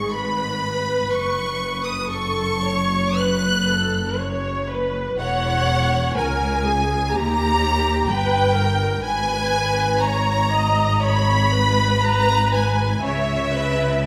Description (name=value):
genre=classical, slow romantic movement for string orchestra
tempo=60 BPM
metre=4/4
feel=uneven beats, rubato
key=G# minor from 5.2 s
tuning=A4 = 440 Hz
part: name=rich studio violin section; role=melody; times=0.0-14.1 s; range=E5 to F#6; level=-27 LUFS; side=equal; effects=none
part: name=warm symphonic violin section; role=second line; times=0.0-14.1 s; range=E5 to F#6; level=-28 LUFS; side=equal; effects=none
part: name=rich symphonic viola section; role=accompaniment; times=0.0-14.1 s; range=G4 to D#5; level=-27 LUFS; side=equal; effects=none
part: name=rich studio cello section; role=bass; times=0.0-14.1 s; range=C#2 to C#3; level=-28 LUFS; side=equal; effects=none
part: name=rich symphonic double bass section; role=bass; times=0.0-14.1 s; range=E1 to D#2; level=-28 LUFS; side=equal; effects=none
room=wet concert hall reverb, RT60 1.8 s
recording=none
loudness=-20 LUFS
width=mono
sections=0.0-14.1 A section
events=none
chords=0.0 G#madd11; 1.1 F#5; 5.2 C#m/E; 7.1 D#; 9.1 G#m; 13.1 C#m